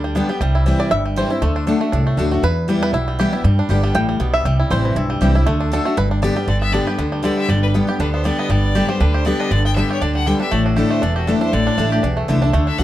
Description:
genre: bluegrass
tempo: 237 BPM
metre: 4/4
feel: swing 55% on 8ths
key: G major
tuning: A4 = 442 Hz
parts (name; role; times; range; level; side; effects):
- bluegrass banjo; melody; 0.0-12.8 s; D3 to G5; -23 LUFS; right 2 dB; none
- picked steel-string acoustic guitar; accompaniment; 0.0-12.8 s; E2 to G4; -19 LUFS; left 2 dB; none
- upright bass; bass; 0.0-12.8 s; E1 to G2; -19 LUFS; equal; none
- clear fiddle; second line; 6.5-12.8 s; F#4 to G5; -25 LUFS; left 3 dB; none
room: light reverb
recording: dark, warm production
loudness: -15 LUFS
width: side -14 dB against mid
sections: 0.0-6.5 A section; 6.5-12.8 A section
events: five-string banjo solo 0.0-6.5; fiddle solo 6.5-12.8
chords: 0.4 C; 1.4 D; 2.4 Em; 3.4 G; 4.5 C; 5.5 D; 6.0 G; 10.5 Asus4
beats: 0.15 | 0.41 0.66 0.91 1.17 | 1.42 1.67 1.93 2.18 | 2.43 2.69 2.94 3.19 | 3.44 3.70 3.95 4.20 | 4.46 4.71 4.96 5.22 | 5.47 5.72 5.97 6.23 | 6.48 6.73 6.99 7.24 | 7.49 7.74 8.00 8.25 | 8.50 8.75 9.01 9.26 | 9.51 9.76 10.01 10.27 | 10.52 10.77 11.02 11.28 | 11.53 11.78 12.03 12.28 | 12.54 12.79

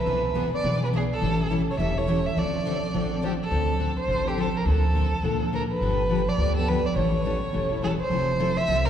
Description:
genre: acoustic string swing (jazz manouche)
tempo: 209 BPM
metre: 4/4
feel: swing 60% on 8ths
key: D minor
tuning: A4 = 441 Hz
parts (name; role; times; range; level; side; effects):
- warm violin; melody; 0.0-8.9 s; G4 to E5; -27 LUFS; right 1 dB; none
- picked steel-string acoustic guitar; accompaniment; 0.1-8.9 s; D3 to A4; -27 LUFS; left 2 dB; none
- picked steel-string acoustic guitar; accompaniment; 0.1-3.3, 8.1-8.9 s; D3 to B4; -33 LUFS; right 4 dB; none
- upright bass; bass; 0.1-8.9 s; E1 to Bb2; -27 LUFS; equal; none
room: wet church reverb, RT60 3.8 s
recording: recorded in a church or concert hall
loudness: -22 LUFS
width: side -9 dB against mid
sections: 0.0-3.5 A section; 3.5-8.9 A section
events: none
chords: 0.1 E7; 1.2 A7; 2.4 Dm7; 4.7 Bbmaj7/D; 5.8 G7; 7.0 A7; 8.1 Fmaj7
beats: | 0.07 0.35 0.64 0.93 | 1.22 1.50 1.79 2.08 | 2.37 2.65 2.94 3.23 | 3.52 3.80 4.09 4.38 | 4.67 4.95 5.24 5.53 | 5.82 6.10 6.39 6.68 | 6.96 7.25 7.54 7.83 | 8.11 8.40 8.69

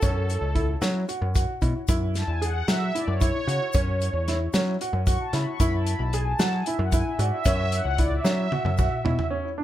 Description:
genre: progressive instrumental, band music in an uneven meter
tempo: 226 BPM (eighths)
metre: 7/8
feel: straight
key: F# minor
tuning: A4 = 440 Hz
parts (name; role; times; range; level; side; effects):
- brassy analog pad; accompaniment; 0.0-9.3 s; A4 to C#6; -30 LUFS; equal; chorus
- warm baby grand piano; arpeggios; 0.0-9.6 s; C#4 to G#4; -29 LUFS; right 1 dB; ping-pong delay
- picked electric bass; bass; 0.0-9.2 s; B1 to F#3; -25 LUFS; equal; none
- warm soul drum kit; drums; 0.0-9.3 s; hi-hat, kick drum, snare drum, toms; -26 LUFS; equal; none
- tube shaker; percussion; 0.0-9.0 s; none; -40 LUFS; left 7 dB; none
room: light reverb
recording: none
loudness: -22 LUFS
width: side -13 dB against mid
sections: 0.0-9.3 A section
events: analog synth pad solo 0.0-9.3; drum fill 8.3-9.3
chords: 0.0 F#m7; 1.9 Esus2; 5.6 E; 7.5 F#5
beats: | 0.03 0.29 0.56 0.82 1.09 1.35 1.62 | 1.88 2.15 2.41 2.68 2.94 3.21 3.48 | 3.74 4.01 4.27 4.54 4.80 5.07 5.33 | 5.60 5.86 6.13 6.39 6.66 6.93 7.19 | 7.46 7.72 7.99 8.25 8.52 8.78 9.05 | 9.31 9.58

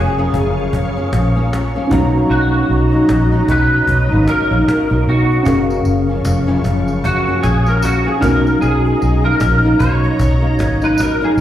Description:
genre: indie pop, bedroom pop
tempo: 76 BPM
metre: 4/4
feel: swing 60% on 16ths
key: unclear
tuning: A4 = 440 Hz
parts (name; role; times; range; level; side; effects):
- electric guitar through a small old amp; melody; 0.0-11.3 s; F#4 to C#5; -19 LUFS; equal; ensemble chorus, slapback echo
- nylon-string guitar; accompaniment; 0.0-11.4 s; F#2 to D#4; -19 LUFS; left 2 dB; ensemble chorus, vibrato effect, slapback echo
- warbly lo-fi synth keys; accompaniment; 0.0-11.4 s; C#4 to A#5; -20 LUFS; right 1 dB; chorus, cassette tape, slapback echo
- soft string machine; sustained chords; 0.0-11.4 s; C#5 to C#6; -28 LUFS; equal; ensemble chorus
- vintage muted fingered electric bass; bass; 0.0-11.4 s; E#1 to B2; -16 LUFS; equal; none
- cajon; drums; 0.2-11.4 s; none; -24 LUFS; equal; none
- tambourine; percussion; 5.5-11.4 s; none; -36 LUFS; left 2 dB; slapback echo
room: light reverb, studio ambience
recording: live gig heard through the venue's PA, recital hall reverb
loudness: -12 LUFS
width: side -12 dB against mid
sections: 0.0-11.4 A section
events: clean electric guitar solo 0.0-11.4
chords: 0.0 F#maj7; 1.9 Bmaj7; 5.5 F#maj7; 8.2 Bmaj7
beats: 0.73 1.52 | 2.31 3.10 3.89 4.67 | 5.46 6.25 7.04 7.83 | 8.62 9.41 10.20 10.98

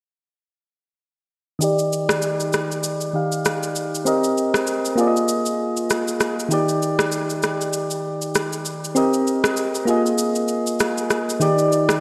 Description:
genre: afrobeats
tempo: 98 BPM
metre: 4/4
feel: swing 58% on 16ths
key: Eb major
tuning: A4 = 444 Hz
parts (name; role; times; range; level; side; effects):
- soft electric-piano-like synth keys; accompaniment; 1.6-12.0 s; Eb3 to F5; -22 LUFS; equal; chorus, low-pass filter
- electronic shaker and rim click; drums; 1.6-12.0 s; none; -26 LUFS; equal; none
room: wet lush hall reverb, RT60 2.6 s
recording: dreamy mix soaked in reverb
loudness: -21 LUFS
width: mono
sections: 1.6-11.4 A section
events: filter sweep on synth keys 1.6-11.4; break 10.2-11.4; kick muted 11.4-12.0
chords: 1.6 Ebmaj7; 4.1 Cm7; 5.0 Bb7sus4; 6.5 Ebmaj7; 9.0 Cm7; 9.9 Bb7sus4; 11.4 Ebmaj7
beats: | 1.61 2.23 2.84 3.45 | 4.06 4.67 5.29 5.90 | 6.51 7.12 7.74 8.35 | 8.96 9.57 10.19 10.80 | 11.41

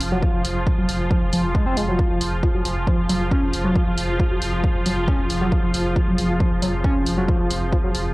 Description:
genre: driving peak-time techno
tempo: 136 BPM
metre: 4/4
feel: straight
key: F minor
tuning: A4 = 440 Hz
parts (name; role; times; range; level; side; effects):
- saturated sub bass; bass; 0.0-8.1 s; F1; -27 LUFS; equal; tube saturation, sidechain pumping, low-pass filter
- swarming drone; drone; 0.0-8.1 s; F3 to F4; -25 LUFS; equal; built-in reverb, sidechain pumping
- electronic hi-hat; drums; 0.0-8.0 s; none; -29 LUFS; equal; sidechain pumping on hats, cassette tape
- warbly tape-like pad; texture; 0.1-8.1 s; C4 to Ab5; -36 LUFS; equal; chorus, built-in reverb, phaser, sidechain pumping
- overdriven synth lead; riff; 0.1-7.9 s; F3 to Db4; -24 LUFS; equal; distortion, chorus, phaser, sidechain pumping, tape echo
- electronic kick drum; drums; 0.2-7.8 s; none; -21 LUFS; equal; cassette tape
room: light reverb, digital ambience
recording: home recording on cassette, lossy compression artefacts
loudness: -18 LUFS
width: side -21 dB against mid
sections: 0.0-8.1 A section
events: fade-in on ambient pad 0.0-8.1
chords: 0.0 Fm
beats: | 0.23 0.67 1.11 1.55 | 1.99 2.43 2.87 3.31 | 3.75 4.20 4.64 5.08 | 5.52 5.96 6.40 6.84 | 7.29 7.73

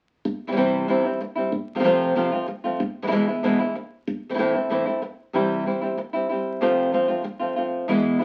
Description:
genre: flamenco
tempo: 189 BPM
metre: 4/4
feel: straight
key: unclear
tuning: A4 = 439 Hz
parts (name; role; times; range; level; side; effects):
- flamenco guitar; solo; 0.3-8.2 s; E2 to F4; -23 LUFS; equal; none
room: wet studio reverb, RT60 0.5 s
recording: very old 78 rpm record, vinyl crackle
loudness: -24 LUFS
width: mono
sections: 0.2-8.2 A section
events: none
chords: 0.2 C; 1.5 F; 2.8 E; 4.1 Am; 5.3 C; 6.6 F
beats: | 0.25 0.57 0.89 1.21 | 1.52 1.84 2.16 2.48 | 2.80 3.11 3.43 3.75 | 4.07 4.38 4.70 5.02 | 5.34 5.66 5.97 6.29 | 6.61 6.93 7.25 7.56 | 7.88 8.20

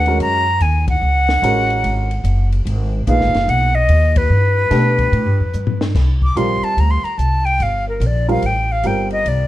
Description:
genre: modal jazz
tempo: 146 BPM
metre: 4/4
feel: swing 66% on 8ths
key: unclear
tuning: A4 = 439 Hz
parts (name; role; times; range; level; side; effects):
- breathy silver concert flute; melody; 0.0-9.5 s; Bb4 to D6; -18 LUFS; left 1 dB; none
- warm baby grand piano; accompaniment; 0.0-9.5 s; A#2 to B4; -21 LUFS; right 1 dB; none
- upright bass; bass; 0.0-9.5 s; F#1 to B2; -16 LUFS; equal; none
- compact cocktail drum kit; drums; 0.1-9.4 s; crash cymbal, hi-hat, kick drum, ride cymbal, snare drum, toms; -25 LUFS; left 2 dB; none
room: light reverb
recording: dark, warm production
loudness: -14 LUFS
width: side -14 dB against mid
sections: 0.0-5.9 A section; 5.9-9.5 B section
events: band accent 0.8, 4.1; drum fill 5.5-5.9; flute solo 5.9-9.5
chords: 0.0 C#9sus4; 4.3 G; 5.9 C7sus4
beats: 0.20 0.60 | 1.01 1.43 1.84 2.25 | 2.66 3.07 3.48 3.89 | 4.30 4.71 5.12 5.54 | 5.95 6.36 6.77 7.18 | 7.60 8.01 8.42 8.83 | 9.25

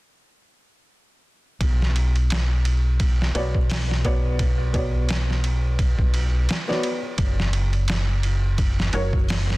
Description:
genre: trip hop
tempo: 86 BPM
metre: 4/4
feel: swing 57% on 16ths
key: B minor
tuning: A4 = 440 Hz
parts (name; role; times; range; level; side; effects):
- deep dub fingered electric bass; bass; 1.6-9.6 s; F#1 to B1; -21 LUFS; equal; tube saturation
- trip hop sampler-style drum kit; drums; 1.6-9.6 s; hi-hat, kick drum, ride cymbal, snare drum; -24 LUFS; equal; overdrive, vintage 12-bit sampler grit
- felt-muted upright piano; accompaniment; 3.3-9.2 s; F#3 to D5; -29 LUFS; equal; tremolo, tape echo
room: digital ambience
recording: dense, heavily limited modern master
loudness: -20 LUFS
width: side -21 dB against mid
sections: 1.6-9.6 A section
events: none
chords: 1.6 Bmadd9; 7.2 N.C.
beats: | 1.61 2.31 3.00 3.70 | 4.40 5.10 5.79 6.49 | 7.19 7.89 8.58 9.28

